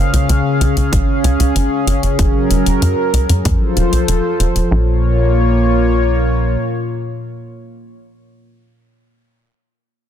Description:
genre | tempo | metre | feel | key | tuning
synthwave | 95 BPM | 4/4 | straight | Bb minor | A4 = 440 Hz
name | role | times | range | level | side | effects
warm analog pad | sustained chords | 0.0-7.9 s | Bb2 to F5 | -16 LUFS | left 1 dB | chorus, sidechain pumping
tight sequencer bass | bass | 0.0-6.6 s | F1 to Gb2 | -15 LUFS | equal | none
electronic hi-hat | drums | 0.1-4.7 s | none | -23 LUFS | left 4 dB | none
electronic kick drum | drums | 0.9-3.6 s | none | -16 LUFS | equal | none
room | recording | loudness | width
light reverb | dense, heavily limited modern master | -13 LUFS | side -10 dB against mid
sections
0.0-4.7 A section; 4.7-7.2 B section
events
filter sweep on analog synth bass 0.0-4.7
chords
0.0 Db; 2.2 Gbadd9; 3.5 F; 4.7 Bbm

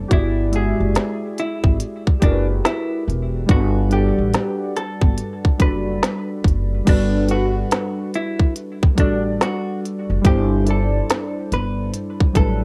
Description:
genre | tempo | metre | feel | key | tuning
lo-fi hip hop | 71 BPM | 4/4 | swing 62% on 16ths | G major | A4 = 440 Hz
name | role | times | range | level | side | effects
warbly lo-fi synth keys | accompaniment | 0.0-12.6 s | F#3 to F#5 | -26 LUFS | equal | chorus, cassette tape, low-pass filter
upright bass | bass | 0.0-12.6 s | E1 to A1 | -24 LUFS | equal | none
vintage hollow-body jazz guitar | melody | 0.1-12.6 s | D4 to B4 | -29 LUFS | equal | low-pass filter, tape echo
organic electronic drum kit | drums | 0.1-12.6 s | crash cymbal, hi-hat, kick drum, snare drum | -19 LUFS | equal | none
room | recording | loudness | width
light reverb | dark, warm production | -19 LUFS | mono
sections
0.0-6.9 A section; 6.9-12.6 B section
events
none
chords
0.1 E7; 3.5 Gmaj7; 10.2 D7sus4/G

